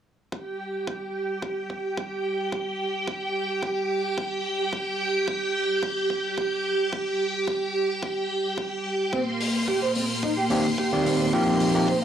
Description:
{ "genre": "nu-disco, nu disco", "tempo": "109 BPM", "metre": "4/4", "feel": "straight", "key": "C minor", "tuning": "A4 = 435 Hz", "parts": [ { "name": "string machine, full ensemble", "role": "sustained chords", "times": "0.3-12.0 s", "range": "Bb3 to C6", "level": "-26 LUFS", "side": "right 1 dB", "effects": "ensemble chorus, sidechain pumping" }, { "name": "electronic kick drum", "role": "drums", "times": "0.3-12.0 s", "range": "none", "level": "-35 LUFS", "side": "equal", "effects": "high-pass filter on kick, small room ambience" }, { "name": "mellow electric guitar", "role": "riff", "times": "9.1-12.0 s", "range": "C4 to C5", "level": "-28 LUFS", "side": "right 2 dB", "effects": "ensemble chorus" }, { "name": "hi-hat", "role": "drums", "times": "9.4-11.7 s", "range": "none", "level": "-32 LUFS", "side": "left 4 dB", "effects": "small room ambience" }, { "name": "overdriven tine electric piano", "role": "accompaniment", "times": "10.5-11.9 s", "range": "Eb3 to D5", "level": "-21 LUFS", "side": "equal", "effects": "tape echo" } ], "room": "light reverb, studio ambience", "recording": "dry, gritty hardware recording", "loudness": "-24 LUFS", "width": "side -9 dB against mid", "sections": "0.3-12.0 A section", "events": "none", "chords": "0.3 N.C.; 9.1 Cm9; 11.3 F9sus4", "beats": "| 0.32 0.87 1.43 1.98 | 2.52 3.08 3.63 4.18 | 4.73 5.28 5.83 6.38 | 6.93 7.48 8.03 8.58 | 9.13 9.68 10.23 10.78 | 11.33 11.88" }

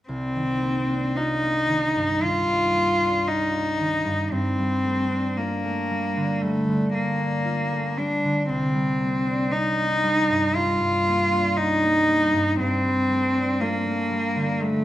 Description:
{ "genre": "classical, impressionist duo for cello and harp", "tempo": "58 BPM", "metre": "4/4", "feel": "rubato", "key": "C dorian", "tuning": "A4 = 438 Hz", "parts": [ { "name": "bright cello", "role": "melody", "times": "0.1-14.8 s", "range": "A3 to F4", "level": "-22 LUFS", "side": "left 1 dB", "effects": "none" }, { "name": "concert harp", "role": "accompaniment", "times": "0.1-14.8 s", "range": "C2 to F4", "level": "-26 LUFS", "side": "right 1 dB", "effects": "none" } ], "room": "wet recital hall reverb, RT60 1.4 s", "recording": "none", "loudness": "-20 LUFS", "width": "side -14 dB against mid", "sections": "0.1-14.8 A section", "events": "none", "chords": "0.1 Cm11; 4.3 Gm9; 8.5 Cm9; 12.6 Gm9", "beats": "| 0.09 1.16 2.21 3.27 | 4.32 5.38 6.41 7.45 | 8.49 9.52 10.55 11.57 | 12.59 13.61 14.61" }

